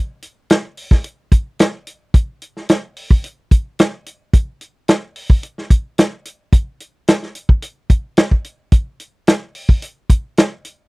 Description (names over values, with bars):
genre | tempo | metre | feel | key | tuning
blues | 109 BPM | 4/4 | straight | none | none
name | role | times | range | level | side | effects
warm soul drum kit | drums | 0.2-10.8 s | hi-hat, kick drum, snare drum | -12 LUFS | equal | none
room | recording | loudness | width
little or no reverb | dry, close 1970s-style studio recording | -15 LUFS | side -28 dB against mid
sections
0.0-10.9 A section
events
none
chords
none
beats
0.50 1.05 1.60 | 2.14 2.69 3.24 3.79 | 4.34 4.89 5.44 5.98 | 6.53 7.08 7.63 8.18 | 8.73 9.28 9.82 10.37